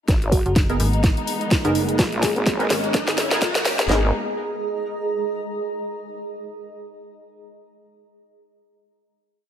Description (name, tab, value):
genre	bass house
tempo	126 BPM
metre	4/4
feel	swing 57% on 16ths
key	G# minor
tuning	A4 = 440 Hz
part	dark symphonic string section	sustained chords	0.1-4.1 s	B2 to D#4	-29 LUFS	left 2 dB	sidechain pumping
part	vowel-sweep wobble bass	bass	0.1-4.1 s	G#1 to A#1	-23 LUFS	equal	chorus, tube saturation, sidechain pumping
part	house drum kit	drums	0.1-4.0 s	kick drum, snare drum	-20 LUFS	equal	overdrive
part	house drum kit	drums	0.1-3.9 s	hi-hat, snare drum	-24 LUFS	equal	overdrive
part	riser	sound effects	1.2-3.9 s	none	-31 LUFS	left 1 dB	none
part	granular cloud pad	texture	1.0-5.8 s	G#4 to A#5	-29 LUFS	right 3 dB	built-in reverb, sidechain pumping
part	bell-like FM electric piano	melody	0.3-2.4 s	D#4 to G#4	-27 LUFS	right 2 dB	chorus, tremolo, digital delay
part	metallic FM bass	bass	0.5-3.8 s	F#1 to G#1	-24 LUFS	equal	overdrive, sidechain pumping
part	band-passed chord stab	stabs	0.7-4.1 s	B3 to A#4	-30 LUFS	right 2 dB	wide subtle chorus, sidechain pumping, digital delay
room	moderate lush hall reverb, RT60 2.1 s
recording	high-pass filter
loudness	-19 LUFS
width	side -9 dB against mid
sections	0.1-3.9 build; 3.9-5.8 final chord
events	build-up 0.1-3.9; drum fill 0.1-3.9; filter sweep 0.1-3.9; riser 1.2-3.9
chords	0.1 G#madd9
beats	| 0.08 0.56 1.04 1.51 | 1.99 2.46 2.94 3.42 | 3.89 4.37 4.85 5.32